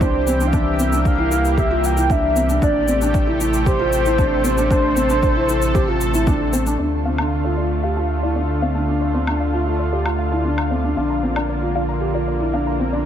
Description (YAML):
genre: piano and strings electronica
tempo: 115 BPM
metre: 4/4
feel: straight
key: D minor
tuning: A4 = 440 Hz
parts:
  - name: warm velvety synth lead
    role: melody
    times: 0.0-6.2 s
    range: C5 to G5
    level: -22 LUFS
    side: equal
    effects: chorus, tape echo, shimmer reverb
  - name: lush unison pad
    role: sustained chords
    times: 0.0-13.1 s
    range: C3 to A4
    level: -24 LUFS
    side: right 1 dB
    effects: chorus, sidechain pumping, shimmer reverb
  - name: felt-muted upright piano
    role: riff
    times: 0.0-13.0 s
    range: C4 to G4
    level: -22 LUFS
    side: left 1 dB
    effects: low-pass filter, tape echo, shimmer reverb
  - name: warm sub bass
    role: bass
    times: 0.0-13.1 s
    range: A1 to D2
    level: -22 LUFS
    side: equal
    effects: sidechain pumping
  - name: electronic kick drum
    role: drums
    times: 0.0-6.4 s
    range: none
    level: -20 LUFS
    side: equal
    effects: none
  - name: shaker and woodblock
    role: drums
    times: 0.0-11.5 s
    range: none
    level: -29 LUFS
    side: left 2 dB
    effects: none
  - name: soft round pluck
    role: arpeggios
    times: 6.8-13.0 s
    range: D5 to Bb5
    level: -30 LUFS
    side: left 3 dB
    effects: chorus, sidechain pumping, tape echo, shimmer reverb
room: moderate lush hall reverb, RT60 1.8 s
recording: none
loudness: -16 LUFS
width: side -9 dB against mid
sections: 0.0-6.8 A section; 6.8-13.1 B section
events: none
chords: 0.0 C; 2.6 Am7; 6.8 Dm; 11.0 Bb